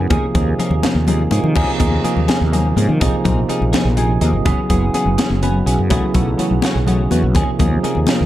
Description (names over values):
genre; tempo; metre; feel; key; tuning
electric jazz fusion; 83 BPM (dotted quarters); 6/8; straight; unclear; A4 = 441 Hz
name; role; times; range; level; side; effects
tine electric piano; accompaniment; 0.0-8.3 s; C3 to Ab5; -19 LUFS; right 2 dB; medium stereo tremolo, wide subtle chorus
mellow fretless electric bass; bass; 0.0-8.3 s; Gb1 to Eb3; -18 LUFS; equal; none
clean electric guitar; stabs; 0.1-8.2 s; Fb3 to Ab4; -24 LUFS; left 4 dB; analog chorus
crisp fusion drum kit; drums; 0.1-8.2 s; crash cymbal, hi-hat, kick drum, snare drum; -21 LUFS; right 1 dB; none
congas; percussion; 0.1-8.2 s; none; -23 LUFS; left 5 dB; none
room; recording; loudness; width
light reverb; dark, warm production; -14 LUFS; side -13 dB against mid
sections
0.0-1.6 A section; 1.6-8.3 A section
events
tine electric piano fill 3.7-4.5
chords
0.1 Eb9sus4; 3.0 Bb9sus4; 4.5 Gb9sus4; 5.9 B9sus4; 7.4 Eb9sus4